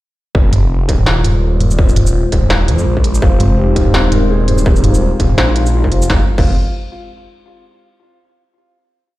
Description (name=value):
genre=half-time drum and bass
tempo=167 BPM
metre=4/4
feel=swing 58% on 16ths, half-time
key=F minor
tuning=A4 = 440 Hz
part: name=phased detuned saw bass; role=bass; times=0.3-6.5 s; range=Eb1 to F2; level=-14 LUFS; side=equal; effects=phaser
part: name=electronic kick drum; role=drums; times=0.3-6.4 s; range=none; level=-14 LUFS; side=equal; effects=distortion
part: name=dark analog pad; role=sustained chords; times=0.9-6.3 s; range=Ab3 to C5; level=-21 LUFS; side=left 1 dB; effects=chorus, sidechain pumping
part: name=industrial drum kit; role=drums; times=0.5-6.4 s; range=crash cymbal, hi-hat, shaker, snare drum, toms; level=-17 LUFS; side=equal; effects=none
part: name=felt-muted upright piano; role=arpeggios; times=3.2-6.5 s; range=C4 to C5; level=-20 LUFS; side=left 1 dB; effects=digital delay
room=digital ambience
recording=played on a big sound system in a bare room, large studio reverb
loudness=-10 LUFS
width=side -17 dB against mid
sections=0.3-6.1 drop; 6.1-7.5 final chord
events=drop 0.3-6.1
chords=0.3 Fm